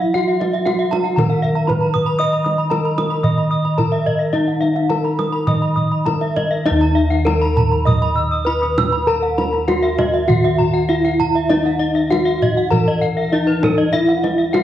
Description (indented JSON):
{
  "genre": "Balinese gamelan",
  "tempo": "99-117 BPM",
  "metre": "4/4",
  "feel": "straight",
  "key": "Eb pelog",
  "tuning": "A4 = 439 Hz",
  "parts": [
    { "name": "gamelan-type bronze metallophone", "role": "melody", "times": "0.0-14.6 s", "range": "Eb4 to Eb5", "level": "-19 LUFS", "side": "equal", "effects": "none" },
    { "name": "gamelan-type bronze metallophone", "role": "arpeggios", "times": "0.0-14.6 s", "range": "Cb5-20c to Fb6+20c", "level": "-23 LUFS", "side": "left 4 dB", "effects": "none" },
    { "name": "gamelan-type bossed gongs", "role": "bass", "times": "0.0-14.6 s", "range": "Eb2 to Eb5", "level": "-20 LUFS", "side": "equal", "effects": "none" },
    { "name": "gamelan-type bronze metallophone", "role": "arpeggios", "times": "0.3-14.2 s", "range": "Bb4-30c to Fb6+20c", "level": "-23 LUFS", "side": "right 3 dB", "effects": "none" },
    { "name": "kendang", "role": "percussion", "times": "0.4-14.6 s", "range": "none", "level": "-23 LUFS", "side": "right 2 dB", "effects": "none" }
  ],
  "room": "moderate scoring stage reverb, RT60 1.4 s",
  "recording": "worn, warbling old tape, cassette tape, warbly pitch drift",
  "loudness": "-15 LUFS",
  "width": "side -12 dB against mid",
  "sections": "0.0-6.7 A section; 6.7-14.6 B section",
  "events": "none",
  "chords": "none",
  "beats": "| 0.14 0.66 1.17 1.69 | 2.20 2.72 3.25 3.79 | 4.33 4.90 5.47 6.06 | 6.66 7.26 7.87 8.47 | 9.08 9.69 10.29 10.90 | 11.51 12.11 12.72 13.32 | 13.93 14.54"
}